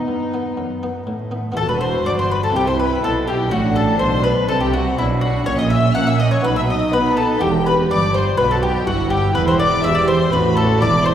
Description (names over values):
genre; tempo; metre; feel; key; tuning
classical, baroque-style concerto movement with solo episodes; 123 BPM; 4/4; straight; E minor; A4 = 440 Hz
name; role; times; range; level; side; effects
bowl-back mandolin; melody; 0.0-11.1 s; D#4 to F#5; -22 LUFS; left 2 dB; none
warm chamber violin section; melody; 0.0-11.1 s; D#5 to F#6; -25 LUFS; left 3 dB; none
rich chamber violin section; second line; 0.0-11.1 s; D#4 to F#5; -23 LUFS; left 2 dB; none
buff-stop harpsichord; accompaniment; 0.0-11.1 s; E2 to A#4; -29 LUFS; left 1 dB; none
dark chamber viola section; accompaniment; 0.0-11.1 s; B3 to G4; -24 LUFS; right 2 dB; none
rich chamber cello section; bass; 0.0-11.1 s; E2 to B3; -22 LUFS; right 2 dB; none
warm studio double bass section; bass; 1.6-11.1 s; E1 to B2; -22 LUFS; right 2 dB; none
room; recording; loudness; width
wet concert hall reverb, RT60 2.2 s; heard from further back in the room; -15 LUFS; side -10 dB against mid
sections
0.0-1.6 A section; 1.6-11.1 B section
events
none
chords
0.0 B; 1.6 Em; 2.5 C; 3.5 F#dim/A; 5.5 C#m69/A#; 6.4 B; 7.4 Em; 10.3 Am